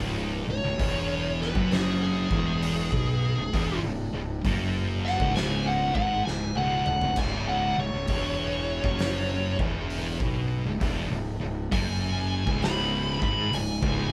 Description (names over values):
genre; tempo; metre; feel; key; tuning
stoner and doom metal; 66 BPM; 4/4; swing 66% on 8ths; C# minor; A4 = 440 Hz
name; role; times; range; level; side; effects
thick fuzz guitar; riff; 0.0-14.1 s; C#2 to B2; -34 LUFS; equal; distortion
thick fuzz guitar; riff; 0.0-14.1 s; C#2 to B2; -34 LUFS; equal; distortion
fuzz fingered electric bass; bass; 0.0-14.1 s; C#1 to B1; -34 LUFS; equal; overdrive
fuzz lead guitar; melody; 0.5-14.1 s; G#4 to B5; -32 LUFS; equal; distortion
oversized low-tuned drum kit; drums; 0.8-14.1 s; crash cymbal, hi-hat, kick drum, snare drum, toms; -34 LUFS; equal; none
room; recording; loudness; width
light reverb; band playing live in one room; -27 LUFS; mono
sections
0.0-14.1 A section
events
lead electric guitar solo 0.0-14.1; drum fill 6.3-7.2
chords
0.0 C#m